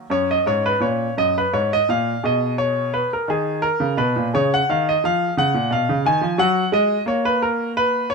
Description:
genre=classical, baroque-style suite movement for grand piano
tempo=58 BPM (dotted quarters)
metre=6/8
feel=rubato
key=F# major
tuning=A4 = 441 Hz
part: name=bright baby grand piano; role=solo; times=0.0-8.1 s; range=F#2 to G#5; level=-18 LUFS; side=equal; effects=none
room=light reverb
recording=close, detailed microphones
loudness=-17 LUFS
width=side -4 dB against mid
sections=0.1-8.1 A section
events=none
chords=0.1 F#; 2.2 G#m/B; 4.3 C#; 5.3 C#7; 6.4 F#

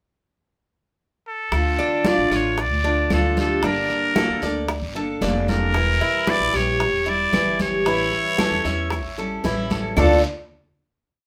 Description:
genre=latin, Cuban son and guajira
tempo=114 BPM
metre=4/4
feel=straight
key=D harmonic minor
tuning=A4 = 441 Hz
part: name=trumpet with straight mute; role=melody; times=1.3-10.2 s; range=A4 to D5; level=-25 LUFS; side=equal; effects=none
part: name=picked steel-string acoustic guitar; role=accompaniment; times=1.5-10.2 s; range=D3 to A4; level=-28 LUFS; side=equal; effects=none
part: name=upright bass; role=bass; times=1.5-10.2 s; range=E1 to E2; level=-28 LUFS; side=equal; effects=none
part: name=bongos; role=percussion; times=1.5-10.1 s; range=none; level=-33 LUFS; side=equal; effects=none
part: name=claves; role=percussion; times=1.5-10.1 s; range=none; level=-35 LUFS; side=equal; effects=none
part: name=congas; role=percussion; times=1.5-10.1 s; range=none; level=-29 LUFS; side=equal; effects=none
part: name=guiro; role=percussion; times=1.5-10.1 s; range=none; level=-40 LUFS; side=equal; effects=none
part: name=Cuban tres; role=arpeggios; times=1.8-10.2 s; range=D4 to E5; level=-28 LUFS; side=equal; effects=none
room=moderate studio reverb, RT60 0.6 s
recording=none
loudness=-21 LUFS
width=mono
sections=0.0-1.5 pickup bar; 1.5-10.0 verse; 10.0-11.3 final chord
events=none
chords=0.0 N.C.; 1.5 Dm; 3.6 Gmadd9; 5.7 Edim; 7.9 A7; 10.0 Dm

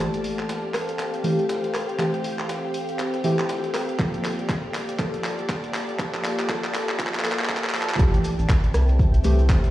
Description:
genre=deep house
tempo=120 BPM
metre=4/4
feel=swing 59% on 16ths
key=unclear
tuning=A4 = 439 Hz
part: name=warbly tape-like pad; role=sustained chords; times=0.0-9.7 s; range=Bb3 to F5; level=-32 LUFS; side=equal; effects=chorus, built-in reverb, vintage 12-bit sampler grit, sidechain pumping
part: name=deep mellow chord stab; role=stabs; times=0.0-9.4 s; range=E3 to A4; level=-28 LUFS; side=equal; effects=chorus, cassette tape, sidechain pumping, analog delay
part: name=dark studio string section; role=texture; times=0.0-9.7 s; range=G4 to A5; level=-35 LUFS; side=equal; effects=sidechain pumping
part: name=string machine, violins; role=texture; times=0.0-8.0 s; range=G4 to F5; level=-36 LUFS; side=left 2 dB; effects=ensemble chorus, sidechain pumping
part: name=breakbeat sampler-style drum kit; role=drums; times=0.1-9.7 s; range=hi-hat, snare drum, tambourine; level=-40 LUFS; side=equal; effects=none
part: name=deep house drum kit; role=drums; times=0.1-9.7 s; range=handclaps, hi-hat, rim click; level=-29 LUFS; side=equal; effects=overdrive
part: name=electronic kick drum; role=drums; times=4.0-9.6 s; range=none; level=-21 LUFS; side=equal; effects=none
part: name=round analog bass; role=bass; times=8.0-9.7 s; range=F1 to C2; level=-20 LUFS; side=equal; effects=sidechain pumping
part: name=maracas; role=percussion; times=8.0-9.7 s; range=none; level=-47 LUFS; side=left 1 dB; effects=none
room=moderate plate reverb, RT60 1.9 s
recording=played on a big sound system in a bare room, cassette tape, large studio reverb, high-pass filter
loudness=-21 LUFS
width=side -15 dB against mid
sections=0.0-8.0 A section; 8.0-9.7 B section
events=build-up 0.0-8.0; drum fill 0.0-8.0; filter sweep 0.0-8.0; drop 8.0-9.7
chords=0.0 Fmaj9; 4.0 Gm9; 8.0 Fmaj9

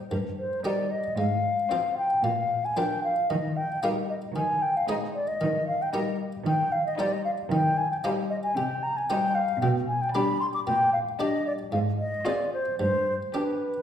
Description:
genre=classical, baroque-style concerto movement with solo episodes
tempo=114 BPM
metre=4/4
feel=straight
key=Eb major, C minor from 6.5 s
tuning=A4 = 440 Hz
part: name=baroque flute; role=melody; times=0.1-13.8 s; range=Bb4 to D6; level=-26 LUFS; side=left 1 dB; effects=none
part: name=buff-stop harpsichord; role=accompaniment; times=0.1-13.7 s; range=G2 to D5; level=-35 LUFS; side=right 1 dB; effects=none
part: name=warm chamber cello section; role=bass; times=0.1-13.2 s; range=G2 to Eb3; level=-31 LUFS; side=right 1 dB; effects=none
part: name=rich chamber violin section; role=melody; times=0.6-13.7 s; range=none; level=barely audible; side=none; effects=none
part: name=warm chamber violin section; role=second line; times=0.6-13.8 s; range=C4 to G4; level=-36 LUFS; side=left 2 dB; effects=none
part: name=dark chamber viola section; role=accompaniment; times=0.6-13.7 s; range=F3 to D4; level=-34 LUFS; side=left 2 dB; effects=none
room=wet recital hall reverb, RT60 1.4 s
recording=heard from further back in the room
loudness=-24 LUFS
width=side -9 dB against mid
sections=0.0-13.8 A section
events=none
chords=0.1 Eb/G; 1.2 Fm/Ab; 2.2 Bb; 3.3 Eb; 4.4 Ab/Eb; 5.4 Eb; 6.5 Cm/Eb; 8.6 Cm; 9.6 G/B; 10.7 Gm/Bb; 11.7 Fm/Ab; 12.8 G

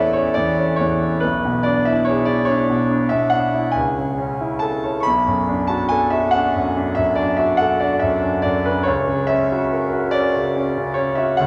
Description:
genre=classical, romantic nocturne for solo piano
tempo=47 BPM (dotted quarters)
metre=9/8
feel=rubato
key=unclear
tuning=A4 = 435 Hz
part: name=bright concert grand piano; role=solo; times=0.0-11.5 s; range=A1 to C#6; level=-19 LUFS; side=equal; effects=none
room=wet church reverb, RT60 3.6 s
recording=recorded in a church or concert hall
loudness=-19 LUFS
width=mono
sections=0.0-11.5 A section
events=none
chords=0.0 A; 1.2 E7/B; 3.7 A/C#; 5.0 Bm7; 8.9 F#7/C#

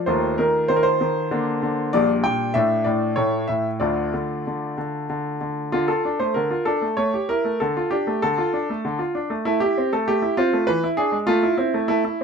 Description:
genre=classical-period piano sonatina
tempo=97 BPM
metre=3/4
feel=straight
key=D minor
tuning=A4 = 441 Hz
part: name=bright baby grand piano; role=solo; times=0.0-12.2 s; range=Bb1 to G5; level=-20 LUFS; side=equal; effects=none
room=moderate studio reverb, RT60 0.6 s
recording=minimal, uncompressed stereo recording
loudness=-19 LUFS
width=side -6 dB against mid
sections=0.0-5.7 A section; 5.7-12.2 B section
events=none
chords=0.1 F7/Eb; 1.3 Bb/D; 1.9 Gm/Bb; 2.5 D5/A; 3.2 A; 3.8 Dm; 7.0 A7; 7.6 Dm; 9.4 Am; 10.7 E7; 11.3 Am

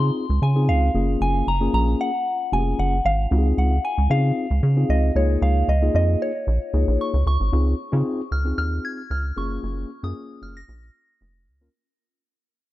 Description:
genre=early-eighties boogie funk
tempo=114 BPM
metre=4/4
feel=straight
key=Db major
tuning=A4 = 440 Hz
part: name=soft synth bell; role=melody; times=0.0-11.4 s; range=Db5 to Bb6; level=-26 LUFS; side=left 1 dB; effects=chorus, phaser
part: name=mellow tine electric piano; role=accompaniment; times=0.0-11.7 s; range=Bb3 to Bb4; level=-27 LUFS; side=left 3 dB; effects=none
part: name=rubbery square bass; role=bass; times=0.0-11.7 s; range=F1 to Db3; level=-20 LUFS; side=equal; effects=none
room=digital ambience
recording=dark, warm production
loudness=-19 LUFS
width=side -16 dB against mid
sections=0.0-7.5 A section; 7.5-11.7 B section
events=fade-out 7.5-11.7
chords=0.0 Dbmaj9; 0.9 Gbmaj7; 3.3 Dbmaj9; 5.2 Db6; 7.5 Dbmaj9; 9.4 Gbmaj7

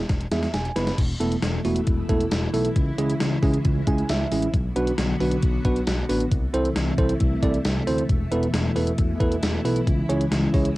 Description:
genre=synth-pop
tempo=135 BPM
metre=4/4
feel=straight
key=E mixolydian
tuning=A4 = 440 Hz
part: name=bell-like tine electric piano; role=accompaniment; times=0.0-10.7 s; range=G#3 to B5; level=-24 LUFS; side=right 2 dB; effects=none
part: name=smooth synth bass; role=bass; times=0.0-10.7 s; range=E1 to E2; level=-26 LUFS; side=equal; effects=none
part: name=gated 80s digital drum machine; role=drums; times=0.1-10.8 s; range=crash cymbal, hi-hat, kick drum, snare drum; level=-25 LUFS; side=equal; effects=gated reverb, gated reverb snare, cassette tape
part: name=string machine, full ensemble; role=sustained chords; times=1.0-10.8 s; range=B2 to F#4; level=-28 LUFS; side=left 1 dB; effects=ensemble chorus
room=moderate booth ambience, RT60 0.3 s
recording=home recording on cassette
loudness=-20 LUFS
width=side -18 dB against mid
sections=1.0-10.8 A section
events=drum fill 0.0-1.0; tine electric piano fill 0.1-1.0, 3.6-4.5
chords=0.0 E; 1.0 Esus4; 2.8 C#m; 4.5 Bm; 6.3 Am/C; 8.1 Esus4; 9.9 C#m

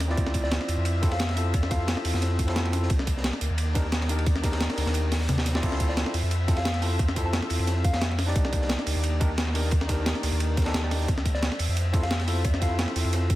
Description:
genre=liquid drum and bass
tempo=176 BPM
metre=4/4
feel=swing 53% on 16ths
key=unclear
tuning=A4 = 440 Hz
part: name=clear studio string section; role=sustained chords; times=0.0-13.4 s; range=Eb3 to E5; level=-37 LUFS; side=left 3 dB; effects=sidechain pumping
part: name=warm sub bass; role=bass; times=0.0-13.4 s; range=C2 to F2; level=-26 LUFS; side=equal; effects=none
part: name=breakbeat sampler-style drum kit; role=drums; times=0.0-13.4 s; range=crash cymbal, hi-hat, snare drum, toms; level=-30 LUFS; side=equal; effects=none
part: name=crunchy breakbeat drum kit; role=drums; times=0.0-13.4 s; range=hi-hat, ride cymbal, snare drum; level=-37 LUFS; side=equal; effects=high-pass filter on cymbals, high-pass filter on hats, high-pass filter on snare, high-pass filter on room
part: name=overdriven tine electric piano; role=accompaniment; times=0.1-13.4 s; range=C4 to D5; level=-33 LUFS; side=equal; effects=ping-pong delay
part: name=electronic kick drum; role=drums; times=0.2-13.4 s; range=none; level=-25 LUFS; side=equal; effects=overdrive
part: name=soft struck synth lead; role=melody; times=0.4-2.0, 5.9-8.1, 11.3-12.9 s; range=D5 to A5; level=-36 LUFS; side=left 1 dB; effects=chorus, tremolo, dub echo
room=light reverb, small room reverb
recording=dense, heavily limited modern master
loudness=-23 LUFS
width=side -16 dB against mid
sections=0.0-5.6 A section; 5.6-13.4 A section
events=drop 0.0-5.6, 5.6-13.4; kick drops out 4.9-5.6; drum fill 5.1-5.6; band accent 5.5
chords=0.2 Dm9; 2.9 Cm9; 5.6 Dm9; 8.4 Cm9; 11.1 Dm9

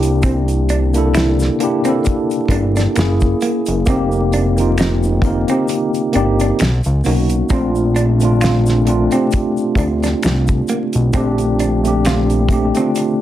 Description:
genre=R&B, neo-soul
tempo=66 BPM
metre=4/4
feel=swing 55% on 16ths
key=Bb major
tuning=A4 = 440 Hz
part: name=mellow tine electric piano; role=accompaniment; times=0.0-13.2 s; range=A3 to Bb4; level=-17 LUFS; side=equal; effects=medium stereo tremolo
part: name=fat analog bass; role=bass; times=0.0-12.7 s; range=F1 to D2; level=-16 LUFS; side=equal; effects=none
part: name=damped 70s drum kit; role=drums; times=0.0-13.2 s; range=hi-hat, kick drum, snare drum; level=-20 LUFS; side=equal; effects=none
part: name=tube shaker and finger snaps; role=percussion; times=0.0-13.2 s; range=none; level=-30 LUFS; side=left 4 dB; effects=none
part: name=electric guitar through a small old amp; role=second line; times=0.2-13.0 s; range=Bb3 to F4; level=-23 LUFS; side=right 2 dB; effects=none
room=moderate small room reverb, RT60 0.6 s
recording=dense, heavily limited modern master, vinyl crackle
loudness=-13 LUFS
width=side -12 dB against mid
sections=0.0-13.2 A section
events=kick muted 5.7-7.5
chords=0.0 C9; 3.0 Gb9; 3.9 F9sus4; 6.6 Bmaj9; 7.5 Bbmaj9

